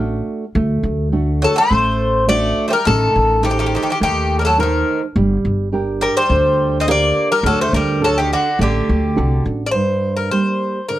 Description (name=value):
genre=greek folk, Greek bouzouki band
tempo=104 BPM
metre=4/4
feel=straight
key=G harmonic minor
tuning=A4 = 441 Hz
part: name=nylon-string guitar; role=accompaniment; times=0.0-11.0 s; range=G2 to C5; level=-21 LUFS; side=right 3 dB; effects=none
part: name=upright bass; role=bass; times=0.0-9.7 s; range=G1 to Eb2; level=-19 LUFS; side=equal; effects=none
part: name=Greek bouzouki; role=melody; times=1.4-11.0 s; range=F#4 to Eb5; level=-17 LUFS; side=left 2 dB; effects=none
part: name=Greek bouzouki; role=second line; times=1.4-9.4 s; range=D3 to C4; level=-24 LUFS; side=right 2 dB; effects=none
room=moderate studio ambience, RT60 0.5 s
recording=none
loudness=-14 LUFS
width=side -14 dB against mid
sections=0.0-9.7 A section; 9.7-11.0 B section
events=none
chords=0.0 D; 2.9 Adim; 5.2 Gm; 7.5 D; 9.7 Gm